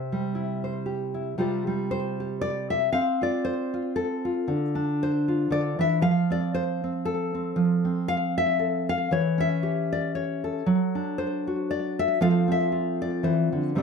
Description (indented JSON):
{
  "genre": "folk, solo fingerstyle acoustic guitar",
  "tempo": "116 BPM",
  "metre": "3/4",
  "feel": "swing 56% on 8ths",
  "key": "unclear",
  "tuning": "A4 = 440 Hz",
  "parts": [
    { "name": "nylon-string guitar", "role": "solo", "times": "0.0-13.8 s", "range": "C3 to F5", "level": "-23 LUFS", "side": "equal", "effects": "slapback echo" }
  ],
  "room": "moderate studio reverb, RT60 0.7 s",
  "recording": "close, detailed microphones",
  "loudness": "-23 LUFS",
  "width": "side -5 dB against mid",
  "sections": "0.0-1.4 A section; 1.4-13.8 B section",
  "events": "none",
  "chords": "0.0 C; 1.4 Csus4; 2.9 F/C; 4.5 Dm7; 6.0 F; 9.1 A7/E; 10.7 D/F#; 12.2 F",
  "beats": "0.34 0.86 | 1.38 1.89 2.41 | 2.92 3.44 3.95 | 4.47 4.98 5.50 | 6.01 6.53 7.05 | 7.56 8.08 8.59 | 9.11 9.62 10.14 | 10.66 11.17 11.69 | 12.20 12.72 13.23 | 13.75"
}